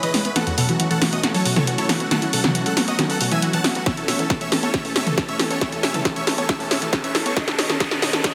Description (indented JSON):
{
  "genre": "uplifting trance",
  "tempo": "137 BPM",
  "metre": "4/4",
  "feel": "straight",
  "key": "unclear",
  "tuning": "A4 = 440 Hz",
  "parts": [
    { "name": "big supersaw lead", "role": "melody", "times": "0.0-8.3 s", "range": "F#4 to A5", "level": "-28 LUFS", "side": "equal", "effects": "sidechain pumping, digital delay" },
    { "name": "lush unison pad", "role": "sustained chords", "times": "0.0-8.3 s", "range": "D#3 to C#5", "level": "-31 LUFS", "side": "equal", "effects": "chorus, phaser, sidechain pumping" },
    { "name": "unison pluck", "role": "arpeggios", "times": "0.0-8.3 s", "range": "D#2 to E4", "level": "-28 LUFS", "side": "equal", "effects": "sidechain pumping, digital delay" },
    { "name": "tight sequencer bass", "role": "bass", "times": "0.0-8.2 s", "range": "E1 to E2", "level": "-40 LUFS", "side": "equal", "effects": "none" },
    { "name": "punchy analog drum machine", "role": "drums", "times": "0.0-8.3 s", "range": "hi-hat, snare drum, toms", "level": "-24 LUFS", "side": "equal", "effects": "none" },
    { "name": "electronic kick drum", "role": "drums", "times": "3.9-8.3 s", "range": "none", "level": "-28 LUFS", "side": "equal", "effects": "overdrive" },
    { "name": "riser", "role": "sound effects", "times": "5.3-8.3 s", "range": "none", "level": "-34 LUFS", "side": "equal", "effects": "none" }
  ],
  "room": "moderate huge ambient reverb, RT60 4.2 s",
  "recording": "dense, heavily limited modern master, high-pass filter",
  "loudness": "-21 LUFS",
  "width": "mono",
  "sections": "0.0-8.3 A section",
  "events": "build-up 0.0-8.3; drum fill 0.0-8.3; riser 5.3-8.3",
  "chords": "0.4 F#m; 3.9 A; 7.4 Badd9"
}